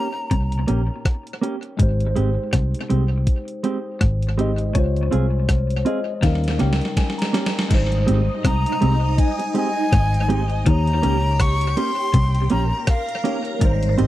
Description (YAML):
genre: lovers rock reggae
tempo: 81 BPM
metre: 4/4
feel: swing 57% on 16ths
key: Ab major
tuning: A4 = 440 Hz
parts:
  - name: breathy bright jazz flute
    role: melody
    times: 0.0-1.0, 8.5-13.4 s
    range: F5 to Db6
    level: -25 LUFS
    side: left 1 dB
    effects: tape echo
  - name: tine electric piano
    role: accompaniment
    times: 0.0-14.1 s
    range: F3 to Bb5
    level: -28 LUFS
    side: left 3 dB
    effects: phaser, tape echo
  - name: mellow electric guitar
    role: stabs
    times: 0.0-14.1 s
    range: Ab3 to Ab4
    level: -24 LUFS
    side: right 4 dB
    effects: spring reverb
  - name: clean electric guitar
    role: riff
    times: 0.3-14.1 s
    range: Ab2 to Eb3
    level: -28 LUFS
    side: left 3 dB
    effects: tremolo, tape echo
  - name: vintage muted fingered electric bass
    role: bass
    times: 0.3-14.1 s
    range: Ab1 to Eb2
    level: -20 LUFS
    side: equal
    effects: none
  - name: gated 80s digital drum machine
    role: drums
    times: 0.3-14.1 s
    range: crash cymbal, hi-hat, kick drum, rim click, snare drum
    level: -21 LUFS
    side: equal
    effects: gated reverb, gated reverb snare, tape echo
  - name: phased string machine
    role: second line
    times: 8.0-14.1 s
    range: Eb4 to C6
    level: -29 LUFS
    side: right 1 dB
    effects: ensemble chorus, phaser
room: little or no reverb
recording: dry, close 1970s-style studio recording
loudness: -18 LUFS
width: side -14 dB against mid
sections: 0.0-7.7 A section; 7.7-14.1 B section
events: tine electric piano fill 5.5-7.7; drum fill 6.2-7.7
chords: 0.0 Eb7; 1.8 Abmaj7; 4.8 Dbmaj7; 6.2 Eb7; 7.7 Abmaj7; 10.7 Eb7